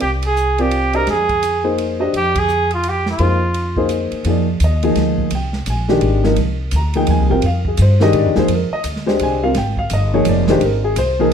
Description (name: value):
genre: modal jazz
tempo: 170 BPM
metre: 3/4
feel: swing 63% on 8ths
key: F dorian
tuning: A4 = 440 Hz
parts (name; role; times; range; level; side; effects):
- warm trumpet; melody; 0.0-3.9 s; F4 to Bb4; -18 LUFS; right 3 dB; none
- upright bass; bass; 0.0-11.3 s; F1 to Ab2; -18 LUFS; equal; none
- open jazz drum kit; drums; 0.0-11.1 s; hi-hat, kick drum, ride cymbal, snare drum; -27 LUFS; right 2 dB; none
- warm baby grand piano; accompaniment; 0.6-11.3 s; Eb3 to Bb5; -17 LUFS; left 1 dB; none
room: moderate large studio reverb, RT60 0.8 s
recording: none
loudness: -14 LUFS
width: side -8 dB against mid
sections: 0.0-4.3 A section; 4.3-11.3 B section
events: band accent 2.3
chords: 0.0 Fm9